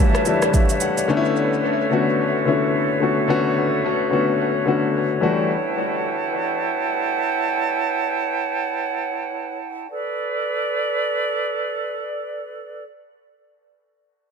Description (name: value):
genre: amapiano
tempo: 109 BPM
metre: 4/4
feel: swing 58% on 16ths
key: B minor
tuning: A4 = 440 Hz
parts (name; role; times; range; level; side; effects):
- warm grand piano; accompaniment; 0.0-5.5 s; D3 to A5; -20 LUFS; left 4 dB; dub echo
- flute section; sustained chords; 0.0-12.9 s; E4 to A5; -22 LUFS; right 3 dB; sidechain pumping
- deep house drum kit; drums; 0.1-1.1 s; kick drum, rim click, shaker; -18 LUFS; right 1 dB; overdrive
room: light reverb, digital ambience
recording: echo-heavy mix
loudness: -19 LUFS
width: side -6 dB against mid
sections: 0.0-9.9 A section; 9.9-12.1 B section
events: grand piano fill 0.0-1.1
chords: 0.0 Em11; 1.1 Bm11; 5.2 Emadd9; 9.9 Bm7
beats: 0.54 | 1.09 1.64 2.19 2.74 | 3.29 3.84 4.39 4.94 | 5.49 6.04 6.59 7.14 | 7.69 8.24 8.79 9.34 | 9.89 10.45 11.00 11.55